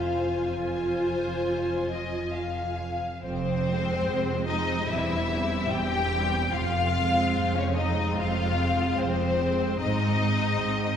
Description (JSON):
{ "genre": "classical, slow romantic movement for string orchestra", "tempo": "67-75 BPM", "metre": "4/4", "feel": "rubato", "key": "F minor", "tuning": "A4 = 440 Hz", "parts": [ { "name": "rich studio violin section", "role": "melody", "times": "0.0-11.0 s", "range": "C5 to Ab5", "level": "-30 LUFS", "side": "left 4 dB", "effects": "none" }, { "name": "rich studio violin section", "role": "second line", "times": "0.0-11.0 s", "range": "C4 to F5", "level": "-31 LUFS", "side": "left 3 dB", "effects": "none" }, { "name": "rich studio viola section", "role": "accompaniment", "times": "0.0-11.0 s", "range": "G3 to F4", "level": "-30 LUFS", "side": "right 1 dB", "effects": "none" }, { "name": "clear chamber cello section", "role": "bass", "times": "0.0-11.0 s", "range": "E2 to Ab2", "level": "-31 LUFS", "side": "right 1 dB", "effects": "none" }, { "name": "rich studio double bass section", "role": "bass", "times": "0.0-11.0 s", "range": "E1 to Ab1", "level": "-32 LUFS", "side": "right 3 dB", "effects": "none" } ], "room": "wet concert hall reverb, RT60 2.0 s", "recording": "recorded in a church or concert hall", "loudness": "-24 LUFS", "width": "side -8 dB against mid", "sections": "0.0-3.2 A section; 3.2-11.0 A section", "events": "none", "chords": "0.0 Fm; 4.9 C/E; 6.5 Fm; 9.8 Ab" }